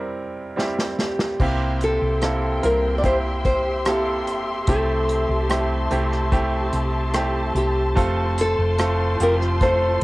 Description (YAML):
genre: pop ballad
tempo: 73 BPM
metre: 4/4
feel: straight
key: unclear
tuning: A4 = 440 Hz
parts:
  - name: nylon-string guitar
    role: melody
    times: 0.0-10.0 s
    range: E4 to D5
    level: -23 LUFS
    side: equal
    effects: cassette tape
  - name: bright baby grand piano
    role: accompaniment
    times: 0.0-10.0 s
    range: C2 to Bb4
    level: -26 LUFS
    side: right 2 dB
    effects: none
  - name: unplugged drum kit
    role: drums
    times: 0.6-10.0 s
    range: crash cymbal, hi-hat, kick drum, rim click, snare drum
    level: -24 LUFS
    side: equal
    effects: cassette tape
  - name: warm studio string section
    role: sustained chords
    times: 1.4-10.0 s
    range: F4 to C6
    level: -28 LUFS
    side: left 1 dB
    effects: none
  - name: hollow-body short-scale fingered electric bass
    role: bass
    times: 1.4-10.0 s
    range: F1 to C2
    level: -24 LUFS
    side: equal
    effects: none
room: light reverb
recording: home recording on cassette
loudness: -19 LUFS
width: side -20 dB against mid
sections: 0.0-1.4 A section; 1.4-10.0 B section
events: drum fill 0.6-1.4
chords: 0.0 C; 1.4 C7; 4.7 Am7/C; 8.0 F